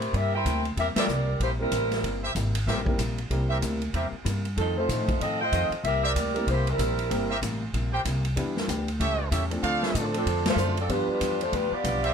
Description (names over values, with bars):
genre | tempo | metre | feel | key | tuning
jazz, big band swing | 190 BPM | 4/4 | swing 61% on 8ths | C mixolydian | A4 = 441 Hz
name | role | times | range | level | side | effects
mellow saxophone section | melody | 0.0-2.2, 4.6-7.3, 10.0-12.1 s | F3 to G5 | -27 LUFS | equal | none
hollow-body jazz guitar | accompaniment | 0.0-12.1 s | F2 to G4 | -36 LUFS | left 6 dB | none
upright bass | bass | 0.0-12.1 s | G1 to Bb2 | -28 LUFS | equal | none
swinging big-band drum kit | drums | 0.0-12.1 s | hi-hat, kick drum, ride cymbal, snare drum | -32 LUFS | equal | none
warm trumpet section | stabs | 1.0-12.1 s | F4 to G5 | -30 LUFS | right 2 dB | none
warm concert grand piano | accompaniment | 1.6-11.4 s | F3 to B4 | -32 LUFS | equal | none
room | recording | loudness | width
little or no reverb | none | -24 LUFS | side -7 dB against mid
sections
0.0-12.1 A section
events
band accent 0.9, 10.4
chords
0.0 C7; 4.6 F7; 5.8 C7; 8.4 Em7; 9.0 A7; 9.6 Dm7; 10.9 G7